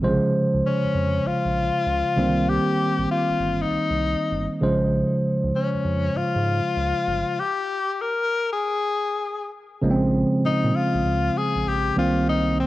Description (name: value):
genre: R&B, new jack swing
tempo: 98 BPM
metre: 4/4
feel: swing 66% on 16ths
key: Bb dorian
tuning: A4 = 441 Hz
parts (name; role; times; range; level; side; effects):
- tine electric piano; accompaniment; 0.0-12.7 s; C3 to C5; -22 LUFS; right 1 dB; cassette tape
- round analog bass; bass; 0.0-12.6 s; G1 to Bb2; -28 LUFS; right 1 dB; none
- bright tenor saxophone; melody; 0.7-12.7 s; C4 to Bb4; -24 LUFS; left 4 dB; cassette tape
room: moderate spring reverb, RT60 1.2 s, small room ambience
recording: home recording on cassette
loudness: -20 LUFS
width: side -16 dB against mid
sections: 0.0-9.8 A section; 9.8-12.7 B section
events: stop 7.4-9.8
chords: 0.0 Bbm7; 2.2 Cm7; 4.6 Bbm7; 7.4 N.C.; 9.8 Bbm7; 12.0 Cm7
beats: | 0.03 0.64 1.25 1.87 | 2.48 3.09 3.70 4.32 | 4.93 5.54 6.15 6.76 | 7.38 7.99 8.60 9.21 | 9.83 10.44 11.05 11.66 | 12.28